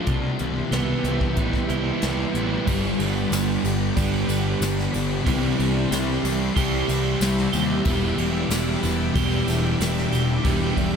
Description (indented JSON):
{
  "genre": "rock, shoegaze and dream pop",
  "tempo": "93 BPM",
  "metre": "4/4",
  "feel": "straight",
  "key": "G major",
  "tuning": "A4 = 440 Hz",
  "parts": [
    { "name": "string machine, full ensemble", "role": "sustained chords", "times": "0.0-11.0 s", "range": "G4 to D6", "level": "-33 LUFS", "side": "equal", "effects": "ensemble chorus" },
    { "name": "twelve-string electric guitar", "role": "arpeggios", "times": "0.0-11.0 s", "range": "E3 to G4", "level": "-32 LUFS", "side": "right 8 dB", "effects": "lush chorus, diffuse ambient delay" },
    { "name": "overdriven semi-hollow guitar", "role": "riff", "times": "0.0-11.0 s", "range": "E2 to G4", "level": "-26 LUFS", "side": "right 7 dB", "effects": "reverse reverb" },
    { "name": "thick fuzz guitar", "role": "riff", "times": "0.0-11.0 s", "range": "E2 to E4", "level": "-26 LUFS", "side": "left 8 dB", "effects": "distortion, lush chorus" },
    { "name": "fuzz picked electric bass", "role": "bass", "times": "0.1-11.0 s", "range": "E1 to Eb2", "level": "-26 LUFS", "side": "equal", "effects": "overdrive" },
    { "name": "soft brush drum kit", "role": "drums", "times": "0.1-10.9 s", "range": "crash cymbal, hi-hat, kick drum, ride cymbal, snare drum", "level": "-28 LUFS", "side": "equal", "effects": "none" },
    { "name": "tambourine", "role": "percussion", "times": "3.3-10.9 s", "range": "none", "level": "-37 LUFS", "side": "left 10 dB", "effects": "none" }
  ],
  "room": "moderate lush hall reverb, RT60 2.9 s",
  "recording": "dreamy mix soaked in reverb",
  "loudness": "-20 LUFS",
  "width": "side -6 dB against mid",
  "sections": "0.0-2.7 A section; 2.7-11.0 B section",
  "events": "none",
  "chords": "0.1 Cmaj7; 2.7 Gmaj7; 5.3 Cmaj7; 7.9 Em7"
}